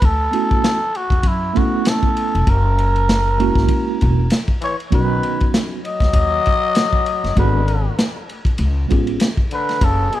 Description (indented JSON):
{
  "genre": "hip hop, jazz-hop",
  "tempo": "98 BPM",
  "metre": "4/4",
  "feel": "swing 58% on 16ths",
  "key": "F# minor",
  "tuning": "A4 = 439 Hz",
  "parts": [
    { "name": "trumpet with cup mute", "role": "melody", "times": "0.0-10.2 s", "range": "E4 to D#5", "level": "-20 LUFS", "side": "equal", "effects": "tape echo" },
    { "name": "upright bass", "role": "bass", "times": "0.0-10.1 s", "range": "E1 to F#2", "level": "-18 LUFS", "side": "equal", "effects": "none" },
    { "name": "crunchy breakbeat drum kit", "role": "drums", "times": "0.0-10.2 s", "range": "hi-hat, kick drum, ride cymbal, snare drum", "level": "-19 LUFS", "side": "equal", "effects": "none" },
    { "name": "mellow tine electric piano", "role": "accompaniment", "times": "0.3-9.3 s", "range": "F#3 to A4", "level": "-21 LUFS", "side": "right 4 dB", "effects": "medium stereo tremolo" },
    { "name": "bright trombone", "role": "second line", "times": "4.6-10.2 s", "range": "B2 to F#3", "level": "-27 LUFS", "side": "left 7 dB", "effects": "tape echo" }
  ],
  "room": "light reverb",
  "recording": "none",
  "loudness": "-15 LUFS",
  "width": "side -13 dB against mid",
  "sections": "0.0-10.2 A section",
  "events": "none",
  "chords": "0.0 Dmaj13 (rootless); 2.5 F#9; 4.9 B; 7.4 G#m7b5; 8.6 C#7",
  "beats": "| 0.02 0.64 1.25 1.86 | 2.47 3.08 3.70 4.31 | 4.92 5.53 6.14 6.76 | 7.37 7.98 8.59 9.21 | 9.82"
}